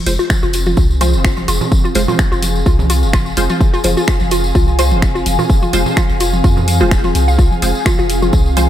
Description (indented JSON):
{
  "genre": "minimal techno",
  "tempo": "127 BPM",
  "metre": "4/4",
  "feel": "swing 55% on 16ths",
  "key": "F minor",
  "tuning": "A4 = 443 Hz",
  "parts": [
    { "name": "ethereal airy pad", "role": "texture", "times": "0.6-8.7 s", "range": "C4 to Ab5", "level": "-22 LUFS", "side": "left 1 dB", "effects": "ensemble chorus, built-in reverb, sidechain pumping" },
    { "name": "filtered dub chord stab", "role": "stabs", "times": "0.1-8.7 s", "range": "Ab3 to C5", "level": "-21 LUFS", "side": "right 1 dB", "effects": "phaser, diffuse ambient delay" },
    { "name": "punchy sub bass", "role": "bass", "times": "0.1-8.7 s", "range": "Eb1 to F2", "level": "-16 LUFS", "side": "equal", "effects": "sidechain pumping" },
    { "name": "house drum kit", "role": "drums", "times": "0.1-8.7 s", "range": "finger snaps, hi-hat", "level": "-22 LUFS", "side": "equal", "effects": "none" },
    { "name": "tambourine", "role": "percussion", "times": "0.1-8.7 s", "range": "none", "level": "-26 LUFS", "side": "left 2 dB", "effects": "none" },
    { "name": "hollow square pluck", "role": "riff", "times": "0.2-8.3 s", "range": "F4 to F5", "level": "-21 LUFS", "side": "equal", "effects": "chorus, sidechain pumping, tape echo" },
    { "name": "electronic kick drum", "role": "drums", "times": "0.3-8.4 s", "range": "none", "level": "-14 LUFS", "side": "equal", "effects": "none" },
    { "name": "electronic toms and congas", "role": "percussion", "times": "0.3-8.7 s", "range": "none", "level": "-23 LUFS", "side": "equal", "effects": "none" }
  ],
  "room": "light reverb",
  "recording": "none",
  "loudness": "-11 LUFS",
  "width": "side -11 dB against mid",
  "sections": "0.0-8.7 A section",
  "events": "none",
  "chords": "0.0 Fm"
}